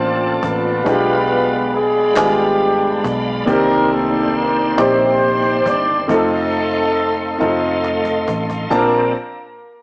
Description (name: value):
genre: slow gospel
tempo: 46 BPM (dotted quarters)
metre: 6/8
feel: straight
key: Bb major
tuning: A4 = 445 Hz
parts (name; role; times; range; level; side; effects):
- mellow horn section; melody; 0.0-9.1 s; G3 to D5; -17 LUFS; equal; tape echo
- warm grand piano; accompaniment; 0.0-9.1 s; Bb1 to A5; -17 LUFS; equal; none
- bright tonewheel organ; sustained chords; 0.0-9.1 s; Ab3 to C6; -24 LUFS; equal; slow rotary speaker, overdrive, chorus vibrato
- hollow-body short-scale fingered electric bass; bass; 0.0-9.1 s; F1 to C2; -28 LUFS; equal; none
- cajon; drums; 0.0-8.9 s; none; -26 LUFS; equal; none
- group handclap; percussion; 2.2-2.6 s; none; -26 LUFS; equal; none
room: moderate stone room reverb, RT60 1.1 s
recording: rough rehearsal-room recording, small speaker sound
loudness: -14 LUFS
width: side -29 dB against mid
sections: 0.0-8.7 A section; 8.7-9.8 B section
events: drum fill 7.4-8.7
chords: 0.0 Bbmaj9; 0.9 G7b9/B; 3.5 Cm9; 6.1 F7; 8.7 Bbmaj9